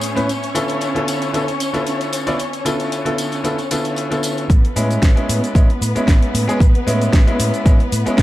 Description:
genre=nu-disco, nu disco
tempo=114 BPM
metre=4/4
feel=swing 53% on 16ths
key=A major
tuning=A4 = 441 Hz
part: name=bright grand piano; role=accompaniment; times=0.0-8.2 s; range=A2 to D5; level=-21 LUFS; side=equal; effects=sidechain pumping, tape echo
part: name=dark symphonic string section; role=sustained chords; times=0.0-8.2 s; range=B3 to C#5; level=-24 LUFS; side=left 1 dB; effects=sidechain pumping, low-pass filter
part: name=house drum kit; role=drums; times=0.0-8.2 s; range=hi-hat, shaker, snare drum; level=-25 LUFS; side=equal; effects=overdrive
part: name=tambourine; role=percussion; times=0.0-4.5 s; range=none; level=-30 LUFS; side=left 1 dB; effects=none
part: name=fingered electric bass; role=bass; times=4.5-8.2 s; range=A1 to A2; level=-20 LUFS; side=equal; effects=tube saturation, sidechain pumping
part: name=electronic kick drum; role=drums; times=4.5-8.2 s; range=none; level=-12 LUFS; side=equal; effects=overdrive
room=light reverb, small room ambience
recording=dark, warm production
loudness=-15 LUFS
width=side -15 dB against mid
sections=0.0-4.5 A section; 4.5-8.2 B section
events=build-up 4.5-8.2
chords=0.3 Dm6; 4.5 Amaj7

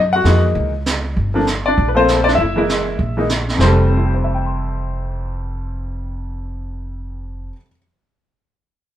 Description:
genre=jazz piano trio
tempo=197 BPM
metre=4/4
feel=swing 62% on 8ths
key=F major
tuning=A4 = 440 Hz
part: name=upright bass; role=bass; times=0.0-7.5 s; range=F1 to Gb2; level=-20 LUFS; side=equal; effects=none
part: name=clear baby grand piano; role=melody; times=0.1-7.8 s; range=F2 to C6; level=-18 LUFS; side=left 2 dB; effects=none
part: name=jazz brush drum kit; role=drums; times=0.2-3.8 s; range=brushed snare drum, hi-hat, kick drum, snare drum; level=-23 LUFS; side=right 3 dB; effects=none
room=moderate studio reverb, RT60 0.5 s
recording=band playing live in one room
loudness=-15 LUFS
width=side -11 dB against mid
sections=0.0-3.6 A section; 3.6-6.0 B section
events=none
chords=0.0 Gb13; 1.2 Gm7; 2.4 Gb9; 3.6 Fmaj9

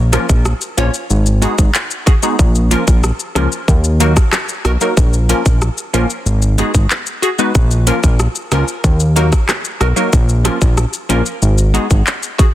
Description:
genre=dancehall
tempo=93 BPM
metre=4/4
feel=straight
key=Bb phrygian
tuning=A4 = 440 Hz
part: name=fat analog bass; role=bass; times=0.0-12.0 s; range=Ab1 to Eb2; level=-13 LUFS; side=equal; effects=none
part: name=wavetable chord stab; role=accompaniment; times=0.1-12.5 s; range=F3 to Db5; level=-19 LUFS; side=equal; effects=phaser, sidechain pumping
part: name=island pop drum kit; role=drums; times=0.1-12.5 s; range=handclaps, hi-hat, kick drum, rim click, shaker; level=-14 LUFS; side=equal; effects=overdrive
room=little or no reverb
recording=dense, heavily limited modern master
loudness=-12 LUFS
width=side -14 dB against mid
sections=0.0-12.5 A section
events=none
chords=0.0 Bbm; 1.1 Abm7; 2.4 Bbm; 3.7 Ebm; 5.0 Bbm; 6.3 Abm7; 7.6 Bbm; 8.8 Ebm; 10.1 Bbm; 11.4 Ab7(no3)

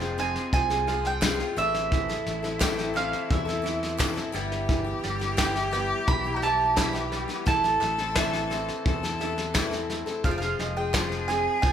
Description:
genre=indie folk with a building arrangement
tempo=86 BPM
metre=4/4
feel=straight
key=unclear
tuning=A4 = 439 Hz
part: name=mandolin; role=melody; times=0.0-11.7 s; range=E5 to B5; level=-28 LUFS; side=right 4 dB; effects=none
part: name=rich cello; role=second line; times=0.0-11.7 s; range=C4 to A4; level=-33 LUFS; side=left 3 dB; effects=none
part: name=picked steel-string acoustic guitar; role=accompaniment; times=0.0-11.7 s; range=A2 to A4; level=-33 LUFS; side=left 5 dB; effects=none
part: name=bright upright piano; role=arpeggios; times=0.0-11.7 s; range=E3 to F4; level=-35 LUFS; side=right 4 dB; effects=none
part: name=fingered electric bass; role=bass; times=0.0-11.7 s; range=F1 to E2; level=-34 LUFS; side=equal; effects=none
part: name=soft brush drum kit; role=drums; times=0.0-11.7 s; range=kick drum, snare drum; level=-28 LUFS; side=left 1 dB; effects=none
part: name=group handclap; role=percussion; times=1.2-11.1 s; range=none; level=-38 LUFS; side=right 3 dB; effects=none
part: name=tambourine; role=percussion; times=1.2-11.1 s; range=none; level=-45 LUFS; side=left 7 dB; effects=none
room=moderate large studio reverb, RT60 1.2 s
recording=band playing live in one room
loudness=-24 LUFS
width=side -9 dB against mid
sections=0.0-11.7 A section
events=none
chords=0.0 Fm; 1.6 Am; 4.3 Em/G; 7.5 Am; 10.2 Fm

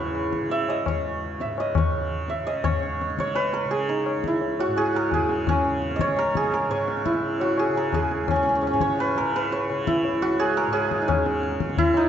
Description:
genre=indian classical, Hindustani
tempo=171 BPM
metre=4/4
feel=straight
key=C# raga kafi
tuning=A4 = 439 Hz
part: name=santur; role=melody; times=0.0-12.1 s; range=C#4 to E5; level=-23 LUFS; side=right 2 dB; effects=none
part: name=tanpura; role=drone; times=0.0-12.1 s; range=C#2 to C#3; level=-32 LUFS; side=right 1 dB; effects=none
part: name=tabla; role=percussion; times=0.1-12.1 s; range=none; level=-28 LUFS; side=left 5 dB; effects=none
room=wet recital hall reverb, RT60 1.8 s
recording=dark, warm production, nothing above 7.8 kHz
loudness=-22 LUFS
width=side -9 dB against mid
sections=0.0-2.6 A section; 2.6-12.1 B section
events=speeding up 0.0-12.1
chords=none

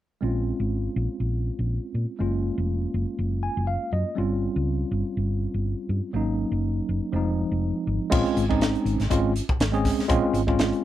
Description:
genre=electric jazz fusion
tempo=121 BPM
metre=4/4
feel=swing 54% on 16ths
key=Bb minor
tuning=A4 = 438 Hz
part: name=tine electric piano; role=accompaniment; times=0.2-10.8 s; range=F3 to Ab5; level=-26 LUFS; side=equal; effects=medium stereo tremolo
part: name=hollow-body short-scale fingered electric bass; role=bass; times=0.2-10.7 s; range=F1 to Bb2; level=-26 LUFS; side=equal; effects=none
part: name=crisp fusion drum kit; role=drums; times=8.1-10.8 s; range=crash cymbal, hi-hat, kick drum, snare drum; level=-26 LUFS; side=equal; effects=none
room=little or no reverb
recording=none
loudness=-23 LUFS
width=side -13 dB against mid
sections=0.2-8.1 A section; 8.1-10.8 B section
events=tine electric piano fill 3.2-4.2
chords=0.2 Bbm9; 2.2 Gbmaj9; 4.2 Dbmaj7#11/G; 6.2 Ab9sus4; 7.1 Fm7; 8.1 Bbm9 (rootless)

